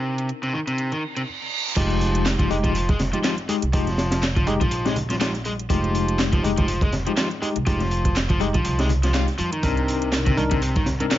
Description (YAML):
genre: breakbeat, breaks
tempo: 122 BPM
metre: 4/4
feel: swing 56% on 16ths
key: F dorian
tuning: A4 = 440 Hz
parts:
  - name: overdriven electric guitar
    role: riff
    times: 0.0-11.2 s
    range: C3 to F4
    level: -26 LUFS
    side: equal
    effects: ping-pong delay
  - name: bell-like tine electric piano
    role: stabs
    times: 0.0-11.2 s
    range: Ab3 to Bb4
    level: -27 LUFS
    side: left 4 dB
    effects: medium stereo tremolo, ping-pong delay
  - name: house drum kit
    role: drums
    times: 0.2-11.2 s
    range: handclaps, hi-hat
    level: -31 LUFS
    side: right 1 dB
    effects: low-pass filter on hats, low-pass filter on snare
  - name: reverse cymbal and impact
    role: sound effects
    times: 1.0-3.7 s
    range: none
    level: -30 LUFS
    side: right 4 dB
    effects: none
  - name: upright bass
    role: bass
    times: 1.8-11.0 s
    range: F1 to F2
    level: -25 LUFS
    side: right 1 dB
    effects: none
  - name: crunchy breakbeat drum kit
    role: drums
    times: 1.8-11.2 s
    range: crash cymbal, hi-hat, kick drum, snare drum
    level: -24 LUFS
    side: right 1 dB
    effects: none
  - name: congas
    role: percussion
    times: 2.4-11.1 s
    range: none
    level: -31 LUFS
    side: left 2 dB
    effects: none
room: little or no reverb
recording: nothing above 7.5 kHz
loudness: -20 LUFS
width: side -13 dB against mid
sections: 0.0-1.8 A section; 1.8-11.2 B section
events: filter sweep on overdriven electric guitar 0.0-1.8; reverse cymbal 1.0-1.8; drop 1.8-11.2; impact 1.8-3.7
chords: 0.0 Cm9; 1.8 Fm9; 9.6 Cm9